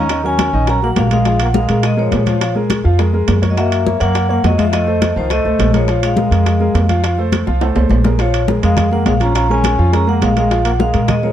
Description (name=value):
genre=Afro-Cuban jazz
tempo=208 BPM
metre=4/4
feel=straight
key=Bb minor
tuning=A4 = 440 Hz
part: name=vibraphone with medium mallets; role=melody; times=0.0-11.3 s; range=C5 to Bb5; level=-19 LUFS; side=equal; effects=slapback echo, plate reverb
part: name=brilliant trombone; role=second line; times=0.0-11.3 s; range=Eb3 to Db4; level=-22 LUFS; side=left 5 dB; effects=none
part: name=warm grand piano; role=accompaniment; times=0.0-11.3 s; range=Eb3 to Gb5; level=-20 LUFS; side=right 1 dB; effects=none
part: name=upright bass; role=bass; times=0.0-11.3 s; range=Bb1 to Bb2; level=-16 LUFS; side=right 1 dB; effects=none
part: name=bongos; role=percussion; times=0.1-11.3 s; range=none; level=-26 LUFS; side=left 8 dB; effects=none
part: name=congas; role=percussion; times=0.1-11.3 s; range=none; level=-21 LUFS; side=left 3 dB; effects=none
part: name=timbales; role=percussion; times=0.1-11.2 s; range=none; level=-24 LUFS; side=right 4 dB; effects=none
room=light reverb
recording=dark, warm production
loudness=-12 LUFS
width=side -11 dB against mid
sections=0.0-8.2 A section; 8.2-11.3 A section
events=drum fill 7.5-8.2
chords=0.0 Ebm7; 1.3 Bbm7; 3.6 Gb7; 4.7 F7; 5.9 Bb5; 7.0 F; 8.2 Bbm7